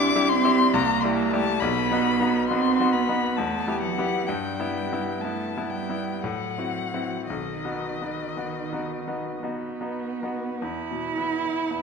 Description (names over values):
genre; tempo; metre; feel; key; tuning
classical, slow romantic movement for piano trio; 48-69 BPM; 3/4; rubato; E minor; A4 = 436 Hz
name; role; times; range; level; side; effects
dark violin; melody; 0.0-11.8 s; B4 to D6; -28 LUFS; left 7 dB; none
dark cello; second line; 0.0-11.8 s; D#3 to E4; -27 LUFS; right 6 dB; none
bright grand piano; accompaniment; 0.0-11.8 s; B1 to G4; -28 LUFS; left 3 dB; none
room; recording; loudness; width
wet scoring stage reverb, RT60 2.0 s; none; -23 LUFS; side -5 dB against mid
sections
0.0-10.6 A section; 10.6-11.8 B section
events
none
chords
0.0 C; 1.6 B; 3.4 Em; 4.3 Em/G; 6.2 F#m7b5/A; 7.3 B; 10.6 E5